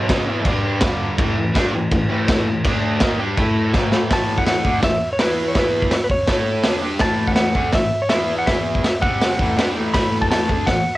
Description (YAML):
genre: garage rock duo or trio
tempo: 164 BPM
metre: 4/4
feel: straight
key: A mixolydian, A major from 4.1 s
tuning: A4 = 440 Hz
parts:
  - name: fuzz guitar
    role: riff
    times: 0.0-10.8 s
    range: G2 to A4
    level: -21 LUFS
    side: equal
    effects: distortion, cassette tape
  - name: raw garage drum kit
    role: drums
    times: 0.1-10.8 s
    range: crash cymbal, hi-hat, kick drum, snare drum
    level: -19 LUFS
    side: equal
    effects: none
  - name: clean lap steel guitar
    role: melody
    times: 4.1-11.0 s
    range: B4 to B5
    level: -21 LUFS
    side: equal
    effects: cassette tape
room: light reverb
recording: home recording on cassette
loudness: -16 LUFS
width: side -17 dB against mid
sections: 0.0-4.1 A section; 4.1-11.0 B section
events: drum fill 3.7-4.1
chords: 0.1 G5; 1.2 A5; 2.6 D5; 3.0 A5; 5.2 E5; 5.9 A; 8.1 E5; 8.8 N.C.; 9.0 C5; 9.4 A5